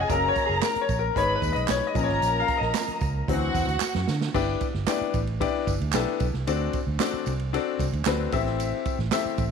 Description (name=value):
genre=uptempo 1960s-style soul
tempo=113 BPM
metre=4/4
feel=straight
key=G major from 4.3 s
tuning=A4 = 440 Hz
part: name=warm studio violin section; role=second line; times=0.0-4.1 s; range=F#4 to B5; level=-27 LUFS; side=right 1 dB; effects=none
part: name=bright grand piano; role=accompaniment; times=0.0-9.4 s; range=E3 to E#5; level=-27 LUFS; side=left 9 dB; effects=none
part: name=vintage muted fingered electric bass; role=bass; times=0.0-9.5 s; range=F#1 to D3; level=-28 LUFS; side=right 2 dB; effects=none
part: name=swinging big-band drum kit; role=drums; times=0.1-9.5 s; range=crash cymbal, hi-hat, kick drum, ride cymbal, snare drum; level=-31 LUFS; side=right 5 dB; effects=none
part: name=tambourine and handclaps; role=percussion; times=0.1-9.5 s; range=none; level=-35 LUFS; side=right 14 dB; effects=none
room=moderate echo chamber reverb, RT60 2.3 s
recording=1960s-style stereo with parts hard left and right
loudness=-23 LUFS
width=side -6 dB against mid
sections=0.0-4.3 A section; 4.3-9.5 B section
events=grand piano solo 0.0-4.3; drum fill 3.8-4.3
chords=0.1 F#; 1.2 G#m; 2.0 A#m; 3.3 D7; 4.3 G6; 6.5 D7; 8.3 Am7